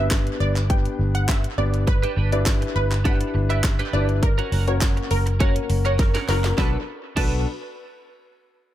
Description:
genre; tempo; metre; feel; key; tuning
dance-pop; 102 BPM; 4/4; straight; B minor; A4 = 440 Hz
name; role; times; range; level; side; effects
wide unison pluck; melody; 0.0-7.4 s; A#4 to G5; -29 LUFS; right 2 dB; wide subtle chorus, sidechain pumping, tape echo
dark baby grand piano; accompaniment; 0.0-7.4 s; A#3 to B4; -29 LUFS; left 5 dB; sidechain pumping
vintage muted fingered electric bass; bass; 0.0-7.4 s; F#1 to B1; -22 LUFS; equal; sidechain pumping
house drum kit; drums; 0.1-7.3 s; crash cymbal, handclaps, hi-hat, kick drum, snare drum; -23 LUFS; equal; none
twelve-string electric guitar; riff; 1.9-7.4 s; C#4 to B4; -31 LUFS; right 6 dB; analog chorus, tape echo
room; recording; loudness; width
light reverb; echo-heavy mix; -19 LUFS; side -13 dB against mid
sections
0.0-6.6 A section; 6.6-8.7 B section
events
drum fill 6.0-6.6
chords
0.0 G; 1.9 Em7/G; 4.2 F#; 6.6 Bm7

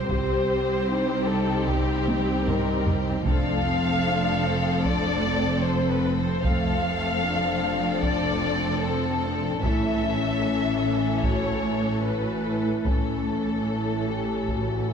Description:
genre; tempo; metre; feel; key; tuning
cinematic, epic orchestral film score; 75 BPM; 4/4; straight; unclear; A4 = 440 Hz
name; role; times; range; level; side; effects
warm studio violin section; melody; 0.0-14.9 s; G4 to F5; -28 LUFS; left 3 dB; none
warm symphonic violin section; second line; 0.0-14.9 s; C4 to A4; -32 LUFS; left 4 dB; none
warm symphonic viola section; accompaniment; 0.0-14.9 s; E3 to C4; -32 LUFS; right 1 dB; none
dark symphonic cello section; bass; 0.0-14.9 s; C2 to A2; -30 LUFS; right 2 dB; none
warm symphonic double bass section; bass; 0.0-14.9 s; F1 to C2; -31 LUFS; right 5 dB; none
dark French horn section; sustained chords; 0.1-14.9 s; A3 to G4; -29 LUFS; left 4 dB; none
taiko ensemble; drums; 0.1-14.9 s; none; -29 LUFS; equal; none
room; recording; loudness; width
moderate concert hall reverb, RT60 2.2 s; none; -22 LUFS; side -7 dB against mid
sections
0.0-14.9 A section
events
drum fill 2.1-3.3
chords
0.0 Cm; 3.3 F; 9.6 A

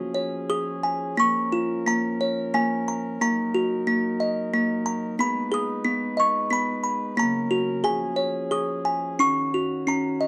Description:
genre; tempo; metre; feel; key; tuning
children's music, lullaby; 90 BPM; 3/4; rubato; unclear; A4 = 437 Hz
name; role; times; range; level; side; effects
music box; melody; 0.0-10.3 s; A#3 to D#6; -25 LUFS; equal; none
pipe organ, principal; sustained chords; 0.0-10.3 s; C#3 to B4; -36 LUFS; equal; none
room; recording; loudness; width
light reverb; close, detailed microphones; -25 LUFS; mono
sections
0.0-1.2 A section; 1.2-10.3 B section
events
none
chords
0.0 C#; 1.2 A#m; 3.2 D#m; 5.2 G#m; 7.2 F#/C#; 7.8 C#; 9.2 D#m7

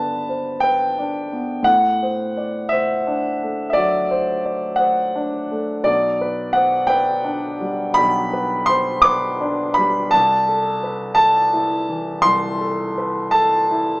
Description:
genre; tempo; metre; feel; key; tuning
classical, romantic nocturne for solo piano; 57 BPM (dotted quarters); 12/8; rubato; G major; A4 = 441 Hz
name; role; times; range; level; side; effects
warm concert grand piano; solo; 0.0-14.0 s; B1 to D6; -16 LUFS; equal; none
room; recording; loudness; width
light reverb; small speaker sound; -16 LUFS; side -23 dB against mid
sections
0.0-14.0 A section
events
none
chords
0.0 G; 1.7 D7/A; 5.9 G/B; 10.1 Am/C

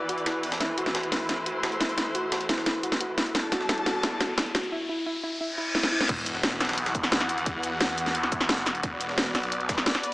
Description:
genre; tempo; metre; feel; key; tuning
dark technical drum and bass; 175 BPM; 4/4; straight; E minor; A4 = 439 Hz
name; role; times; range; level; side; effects
warm chamber string section; sustained chords; 0.0-10.1 s; E2 to A5; -31 LUFS; left 1 dB; sidechain pumping
soft round pluck; arpeggios; 0.1-6.0 s; E4 to F#4; -32 LUFS; equal; chorus, vintage 12-bit sampler grit, sidechain pumping, tape echo
breakbeat sampler-style drum kit; drums; 0.1-10.1 s; hi-hat, snare drum; -35 LUFS; equal; none
drum and bass drum kit; drums; 0.1-10.1 s; crash cymbal, hi-hat, shaker, snare drum; -27 LUFS; equal; none
riser, reverse cymbal and sub drop; sound effects; 3.3-7.5 s; none; -33 LUFS; left 2 dB; none
snarling distorted saw bass; bass; 6.1-9.8 s; E1 to E2; -30 LUFS; equal; distortion
electronic kick drum; drums; 6.1-9.8 s; none; -32 LUFS; equal; none
room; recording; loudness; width
moderate digital room reverb, RT60 1.2 s; small speaker sound; -24 LUFS; side -20 dB against mid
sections
0.0-6.1 A section; 6.1-10.1 B section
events
build-up 0.0-6.1; drum fill 0.6-4.7, 5.7-6.1; riser 3.3-6.1; reverse cymbal 5.4-6.1; drop 6.1-10.1; impact 6.1-7.5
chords
0.0 Bm/E; 0.6 Am/E; 3.3 Gsus2/E; 6.1 Esus2; 8.8 Bm/E

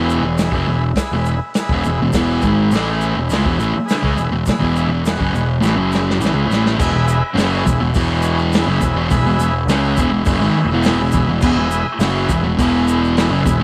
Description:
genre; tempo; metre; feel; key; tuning
garage rock duo or trio; 103 BPM; 4/4; straight; E major; A4 = 440 Hz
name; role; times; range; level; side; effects
overdriven combo organ; sustained chords; 0.0-13.6 s; G#4 to F#5; -26 LUFS; equal; none
thick fuzz guitar; riff; 0.0-13.6 s; E2 to C#4; -19 LUFS; equal; distortion
growling picked electric bass; bass; 0.0-13.6 s; E1 to C#2; -24 LUFS; equal; overdrive, tube saturation
egg shaker; percussion; 0.1-13.6 s; none; -38 LUFS; equal; none
vintage drum kit; drums; 0.4-13.6 s; crash cymbal, hi-hat, kick drum, snare drum; -23 LUFS; equal; none
room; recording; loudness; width
moderate spring reverb, RT60 2.5 s; none; -17 LUFS; mono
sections
0.0-6.8 A section; 6.8-13.6 B section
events
drum fill 5.6-6.8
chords
0.0 E

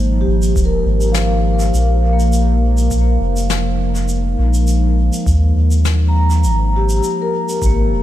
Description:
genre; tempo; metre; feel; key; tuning
ambient dub; 102 BPM; 4/4; swing 54% on 16ths; unclear; A4 = 441 Hz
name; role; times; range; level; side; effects
warbly tape-like pad; sustained chords; 0.0-8.0 s; F3 to C5; -22 LUFS; right 2 dB; chorus, built-in reverb
vibraphone with soft mallets; arpeggios; 0.0-8.0 s; Bb3 to Bb5; -21 LUFS; left 2 dB; tape echo
soft dub sub bass; bass; 0.0-8.0 s; Eb1 to Eb2; -14 LUFS; equal; none
shaker and snare drum; drums; 0.4-7.7 s; none; -26 LUFS; left 4 dB; dub echo
electronic kick drum; drums; 0.6-7.7 s; none; -19 LUFS; equal; overdrive
room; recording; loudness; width
studio reverb; none; -13 LUFS; side -13 dB against mid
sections
0.0-8.0 A section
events
none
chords
0.0 Abmaj9; 1.7 Bb5; 6.4 Abmaj9

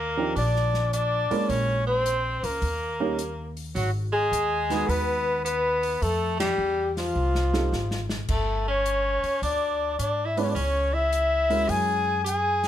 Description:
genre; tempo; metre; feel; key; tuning
jazz, small-group swing and bop; 106 BPM; 4/4; swing 67% on 8ths; unclear; A4 = 440 Hz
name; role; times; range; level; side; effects
breathy flugelhorn; melody; 0.0-12.7 s; F4 to Ab5; -26 LUFS; left 3 dB; none
edgy tenor saxophone; second line; 0.0-12.7 s; F3 to Ab4; -31 LUFS; right 4 dB; none
upright bass; bass; 0.0-12.7 s; G1 to Ab2; -29 LUFS; equal; none
warm baby grand piano; accompaniment; 0.2-12.2 s; F3 to Cb5; -29 LUFS; right 5 dB; none
open jazz drum kit; drums; 0.4-12.7 s; crash cymbal, hi-hat, kick drum, ride cymbal, snare drum; -35 LUFS; left 1 dB; none
room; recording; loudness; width
moderate club reverb, RT60 0.8 s; none; -23 LUFS; side -11 dB against mid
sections
0.0-12.7 A section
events
band accent 6.3; drum fill 7.2-8.3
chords
0.0 Ebmaj7(no3); 1.5 Bbm7b5; 2.6 Eb7; 3.8 Abm7; 6.0 Fadd9; 8.3 G; 10.6 Dbm; 11.7 Gb9

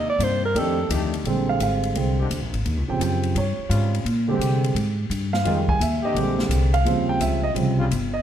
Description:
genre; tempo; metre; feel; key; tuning
jazz, big band swing; 171 BPM; 4/4; swing 65% on 8ths; Bb mixolydian; A4 = 440 Hz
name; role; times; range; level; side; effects
breathy alto saxophone; melody; 0.0-0.9 s; A4 to D5; -24 LUFS; right 2 dB; none
fingerpicked steel-string acoustic guitar; accompaniment; 0.0-1.1 s; F2 to G4; -30 LUFS; left 7 dB; none
upright bass; bass; 0.0-8.2 s; G1 to C3; -23 LUFS; left 1 dB; none
swinging big-band drum kit; drums; 0.2-8.0 s; hi-hat, kick drum, ride cymbal, snare drum; -32 LUFS; left 2 dB; none
warm grand piano; accompaniment; 0.5-8.2 s; Db3 to Ab5; -24 LUFS; right 3 dB; none
clear trombone section; sustained chords; 0.9-7.9 s; Db3 to G4; -31 LUFS; left 4 dB; none
room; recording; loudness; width
light reverb; dark, warm production; -20 LUFS; side -10 dB against mid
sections
0.0-1.2 A section; 1.2-8.2 A section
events
alto saxophone solo 0.0-1.2; grand piano solo 1.2-8.2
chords
0.0 Cm7; 0.5 F13; 1.2 Bb13; 2.7 Eb13 (rootless); 4.1 Bb13; 5.5 Fm7; 6.2 Bb13; 6.9 Eb13

